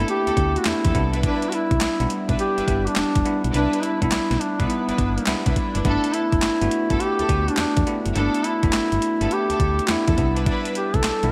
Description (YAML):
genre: R&B, new jack swing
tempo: 104 BPM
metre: 4/4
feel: swing 66% on 16ths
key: G major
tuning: A4 = 440 Hz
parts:
  - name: mellow duduk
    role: melody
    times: 0.0-11.3 s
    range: B3 to A4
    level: -25 LUFS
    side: equal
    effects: none
  - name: bell-like tine electric piano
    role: accompaniment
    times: 0.0-11.3 s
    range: G3 to G4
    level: -29 LUFS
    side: equal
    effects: none
  - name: dark studio string section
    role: stabs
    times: 0.0-10.7 s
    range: B3 to B4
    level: -34 LUFS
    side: equal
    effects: none
  - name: solid FM bass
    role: bass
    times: 0.0-11.3 s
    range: E1 to E2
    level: -27 LUFS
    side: equal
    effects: none
  - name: crisp 8-bit digital drum machine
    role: drums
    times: 0.1-11.3 s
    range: handclaps, hi-hat, kick drum, snare drum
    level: -27 LUFS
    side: equal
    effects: overdrive
room: moderate lush hall reverb, RT60 2.2 s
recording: bright 1980s-style digital production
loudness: -21 LUFS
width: mono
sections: 0.0-11.3 A section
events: none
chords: 0.0 G69; 0.9 Cmaj9; 5.8 G69; 10.2 Cmaj9